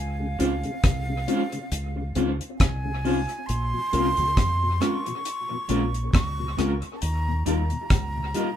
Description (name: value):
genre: lovers rock reggae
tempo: 68 BPM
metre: 4/4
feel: swing 56% on 16ths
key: Bb dorian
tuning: A4 = 443 Hz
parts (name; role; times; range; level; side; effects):
- breathy jazz flute; melody; 0.0-8.6 s; F5 to Db6; -30 LUFS; right 2 dB; dub echo
- deep dub fingered electric bass; bass; 0.0-8.3 s; Bb1 to F2; -27 LUFS; equal; none
- mellow tonewheel organ; accompaniment; 0.2-8.4 s; Eb2 to Ab4; -34 LUFS; left 3 dB; chorus vibrato, slow rotary speaker, dub echo
- mellow tine electric piano; accompaniment; 0.4-8.5 s; G3 to F4; -28 LUFS; left 2 dB; medium stereo tremolo
- electric guitar at the edge of break-up; stabs; 0.4-8.5 s; G3 to C5; -28 LUFS; equal; tremolo
- deep reggae drum kit; drums; 0.4-8.6 s; hi-hat, kick drum, rim click; -24 LUFS; equal; none
room: moderate studio ambience, RT60 0.5 s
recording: band playing live in one room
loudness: -22 LUFS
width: side -10 dB against mid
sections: 0.0-8.6 A section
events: none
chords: 0.0 Dbmaj7; 3.5 Bbm7; 7.0 Ebadd9